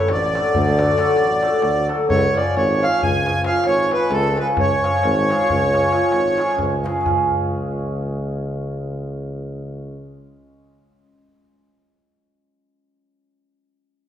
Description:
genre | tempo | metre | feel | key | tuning
balkan folk, Balkan wedding band | 267 BPM (eighths) | 11/8 | straight | unclear | A4 = 440 Hz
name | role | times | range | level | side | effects
accordion | melody | 0.0-6.5 s | A4 to G#5 | -21 LUFS | right 1 dB | none
accordion | second line | 0.0-6.6 s | A4 to G#5 | -24 LUFS | left 1 dB | light tremolo tuning
cimbalom | accompaniment | 0.0-11.6 s | E#3 to A4 | -21 LUFS | equal | none
warm tuba | bass | 0.1-10.3 s | G#1 to D2 | -24 LUFS | equal | none
darbuka | percussion | 0.1-7.3 s | none | -27 LUFS | left 1 dB | none
room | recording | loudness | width
wet recital hall reverb, RT60 1.4 s | recorded in a church or concert hall | -16 LUFS | side -10 dB against mid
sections
0.0-7.0 A section; 7.0-9.5 B section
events
none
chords
0.0 D; 2.1 C#

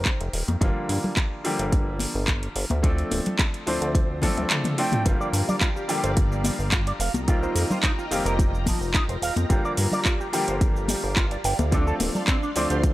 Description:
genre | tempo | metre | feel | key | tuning
nu-disco, nu disco | 108 BPM | 4/4 | straight | G minor | A4 = 440 Hz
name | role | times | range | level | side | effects
reedy concert flute | melody | 0.0-0.3, 4.8-5.0 s | C5 to G5 | -34 LUFS | right 2 dB | tape echo
bright grand piano | accompaniment | 0.0-12.9 s | D3 to C5 | -29 LUFS | left 1 dB | sidechain pumping, tape echo
chorused synth bass | bass | 0.0-12.9 s | D1 to G2 | -26 LUFS | equal | none
electronic kick drum | drums | 0.1-12.9 s | none | -23 LUFS | equal | small room ambience
house drum kit | drums | 0.1-12.9 s | cabasa, handclaps, hi-hat, toms | -28 LUFS | equal | small room ambience
congas | percussion | 0.5-12.3 s | none | -30 LUFS | left 2 dB | none
string machine, full ensemble | sustained chords | 5.1-12.9 s | D4 to C6 | -33 LUFS | right 1 dB | phaser, ensemble chorus, sidechain pumping
electric guitar with an envelope filter | riff | 5.1-12.8 s | F3 to G5 | -31 LUFS | right 2 dB | analog chorus
room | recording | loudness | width
little or no reverb | dry, gritty hardware recording | -21 LUFS | side -16 dB against mid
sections
0.0-12.9 A section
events
drum fill 4.2-5.1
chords
0.0 F9sus4; 0.6 Gm7; 2.8 Dm7; 5.1 Gm7; 7.0 F9sus4; 9.5 Gm7; 11.7 Dm7

